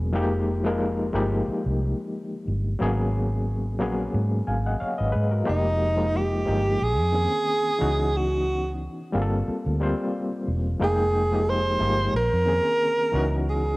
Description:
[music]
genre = R&B, neo-soul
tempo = 90 BPM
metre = 4/4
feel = swing 56% on 16ths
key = F minor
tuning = A4 = 442 Hz
[part]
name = overdriven reed electric piano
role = accompaniment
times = 0.0-13.8 s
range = Eb3 to Ab5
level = -27 LUFS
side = left 1 dB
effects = fast tremolo, cassette tape
[part]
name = vintage muted fingered electric bass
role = bass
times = 0.0-13.8 s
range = E1 to Ab2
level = -25 LUFS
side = equal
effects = transformer saturation
[part]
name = warm tenor saxophone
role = melody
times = 5.5-13.8 s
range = Eb4 to C5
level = -24 LUFS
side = right 1 dB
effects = cassette tape
[sound]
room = moderate spring reverb, RT60 2.6 s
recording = home recording on cassette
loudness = -22 LUFS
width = side -21 dB against mid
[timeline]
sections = 0.0-5.5 A section; 5.5-13.8 B section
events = none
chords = 0.1 Fm11; 2.8 Abm11; 5.5 Fm11; 6.8 Bbm11; 7.8 Dbm11; 9.1 Gm11; 10.8 Fm11; 12.1 Bbm11; 13.1 Dbm11

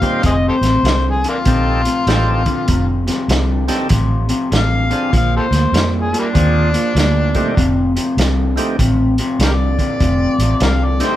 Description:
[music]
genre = electric blues shuffle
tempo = 98 BPM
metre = 4/4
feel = swing 64% on 8ths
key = F mixolydian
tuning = A4 = 440 Hz
[part]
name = overdriven harmonica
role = melody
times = 0.0-11.2 s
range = G3 to F5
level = -20 LUFS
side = left 2 dB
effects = none
[part]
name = tonewheel organ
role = accompaniment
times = 0.0-11.2 s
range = A3 to C5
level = -22 LUFS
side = right 2 dB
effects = slow rotary speaker, overdrive
[part]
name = electric guitar through a small old amp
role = riff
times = 0.0-11.2 s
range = F2 to G3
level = -19 LUFS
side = left 1 dB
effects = spring reverb
[part]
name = vintage muted fingered electric bass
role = bass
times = 0.0-11.0 s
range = F1 to F2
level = -17 LUFS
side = equal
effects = none
[part]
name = vintage drum kit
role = drums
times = 0.0-11.1 s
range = hi-hat, kick drum, snare drum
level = -20 LUFS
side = equal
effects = none
[sound]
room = light reverb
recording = band playing live in one room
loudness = -13 LUFS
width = side -13 dB against mid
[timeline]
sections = 0.0-11.2 A section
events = none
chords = 0.2 F7; 5.1 Bb7; 7.6 F7

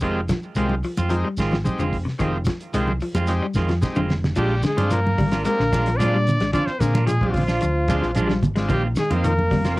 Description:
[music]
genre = afrobeat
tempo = 111 BPM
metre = 4/4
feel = straight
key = Bb mixolydian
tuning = A4 = 437 Hz
[part]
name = combo organ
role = accompaniment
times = 0.0-9.8 s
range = Ab3 to Bb4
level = -28 LUFS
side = left 1 dB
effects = none
[part]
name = clean electric guitar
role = arpeggios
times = 0.0-9.8 s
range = C3 to Ab3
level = -27 LUFS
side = left 3 dB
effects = none
[part]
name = electric guitar at the edge of break-up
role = stabs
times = 0.0-9.8 s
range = Eb3 to F4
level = -27 LUFS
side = right 3 dB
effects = warbly pitch drift, analog delay
[part]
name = fingered electric bass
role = bass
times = 0.0-9.8 s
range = F1 to Bb2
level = -23 LUFS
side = equal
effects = none
[part]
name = damped 70s drum kit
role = drums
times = 0.0-9.8 s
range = crash cymbal, hi-hat, kick drum, snare drum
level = -28 LUFS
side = equal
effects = none
[part]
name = congas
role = percussion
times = 0.0-9.7 s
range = none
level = -26 LUFS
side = right 1 dB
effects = none
[part]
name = shekere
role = percussion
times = 0.0-9.8 s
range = none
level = -29 LUFS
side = right 1 dB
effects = none
[part]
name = clear trumpet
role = melody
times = 4.4-9.8 s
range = F4 to D5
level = -26 LUFS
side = left 1 dB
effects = none
[part]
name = warm trombone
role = second line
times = 4.4-9.7 s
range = F3 to D4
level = -28 LUFS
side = right 1 dB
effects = none
[sound]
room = light reverb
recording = home recording on cassette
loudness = -19 LUFS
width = side -20 dB against mid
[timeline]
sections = 0.0-4.4 A section; 4.4-9.8 B section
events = drum fill 3.8-4.4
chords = 0.0 Fm7; 4.4 Bb7; 8.7 Ab6

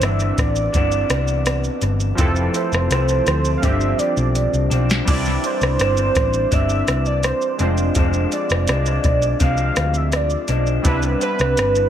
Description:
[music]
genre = indie pop, bedroom pop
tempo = 83 BPM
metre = 4/4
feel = straight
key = C major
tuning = A4 = 439 Hz
[part]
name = warm velvety synth lead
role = melody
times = 0.0-11.9 s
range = B4 to F5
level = -22 LUFS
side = right 2 dB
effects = wide subtle chorus, analog delay
[part]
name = electric guitar through a small old amp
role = accompaniment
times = 0.0-11.9 s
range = F2 to D4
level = -25 LUFS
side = left 3 dB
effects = wide subtle chorus, warbly pitch drift, analog delay
[part]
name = warm analog keys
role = accompaniment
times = 0.0-11.9 s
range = E3 to D5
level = -26 LUFS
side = right 3 dB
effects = chorus, cassette tape, analog delay
[part]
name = hollow-body short-scale picked electric bass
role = bass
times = 0.0-11.9 s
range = F1 to D2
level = -20 LUFS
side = equal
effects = none
[part]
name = soft vintage rhythm box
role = drums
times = 0.0-11.9 s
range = crash cymbal, hi-hat, kick drum, rim click, shaker, snare drum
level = -22 LUFS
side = equal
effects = analog delay
[sound]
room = little or no reverb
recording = echo-heavy mix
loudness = -16 LUFS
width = side -10 dB against mid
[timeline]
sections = 0.0-5.1 A section; 5.1-11.9 A section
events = drum fill 3.6-5.1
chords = 0.0 Cmaj9; 2.2 Fmaj7; 3.6 G7sus4; 5.1 Cadd9; 7.6 Fm6; 10.8 Cmaj9

